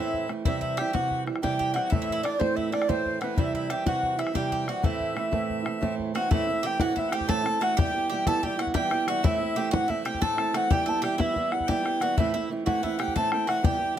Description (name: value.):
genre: celtic folk, Celtic slip jig.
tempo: 123 BPM (dotted quarters).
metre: 9/8.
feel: straight.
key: A dorian.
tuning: A4 = 439 Hz.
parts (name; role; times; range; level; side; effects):
mellow baroque flute; melody; 0.0-14.0 s; B4 to A5; -29 LUFS; equal; none.
Irish bouzouki; second line; 0.0-13.9 s; B3 to A4; -34 LUFS; right 4 dB; none.
accordion; second line; 0.0-14.0 s; B4 to A5; -34 LUFS; left 3 dB; none.
fingerpicked acoustic archtop guitar; accompaniment; 0.0-14.0 s; A2 to E4; -29 LUFS; right 5 dB; none.
bodhran; percussion; 0.1-13.7 s; none; -27 LUFS; left 3 dB; none.
room: light reverb.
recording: close, detailed microphones.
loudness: -24 LUFS.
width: side -10 dB against mid.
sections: 0.0-6.3 A section; 6.3-14.0 B section.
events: none.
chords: 0.5 C; 1.9 Am; 3.4 C; 4.9 Am; 7.8 Em; 9.2 Am; 10.7 Em; 12.2 Am.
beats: | 0.45 0.94 1.43 | 1.92 2.41 2.90 | 3.38 3.87 4.36 | 4.85 5.34 5.83 | 6.32 6.80 7.29 | 7.78 8.27 8.76 | 9.24 9.73 10.22 | 10.71 11.20 11.69 | 12.18 12.67 13.16 | 13.65.